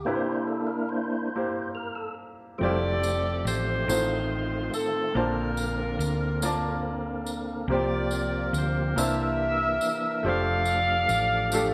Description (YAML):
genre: slow gospel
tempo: 47 BPM (dotted quarters)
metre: 6/8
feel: straight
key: F major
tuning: A4 = 441 Hz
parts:
  - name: warm upright piano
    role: accompaniment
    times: 0.0-11.7 s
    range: A2 to A5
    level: -34 LUFS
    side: equal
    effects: none
  - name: percussive tonewheel organ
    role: sustained chords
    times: 0.0-11.7 s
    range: D3 to C5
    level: -34 LUFS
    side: equal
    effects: slow rotary speaker, overdrive, chorus vibrato
  - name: hollow-body short-scale fingered electric bass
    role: bass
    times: 0.0-11.7 s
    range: F1 to D2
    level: -33 LUFS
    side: equal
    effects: none
  - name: mellow saxophone section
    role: melody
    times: 2.6-11.7 s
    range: D4 to F5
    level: -30 LUFS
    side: equal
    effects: tape echo
  - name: tambourine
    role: percussion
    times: 3.0-11.7 s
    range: none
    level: -41 LUFS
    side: equal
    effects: none
room: moderate large studio reverb, RT60 1.3 s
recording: none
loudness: -27 LUFS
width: mono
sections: 0.0-2.6 A section; 2.6-11.7 B section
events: tonewheel organ solo 0.0-2.6; break 0.1-2.6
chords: 0.1 C7; 2.6 Fmaj9; 3.9 F7/A; 5.2 Bbmaj9; 7.7 C7sus4; 9.0 C13; 10.2 F69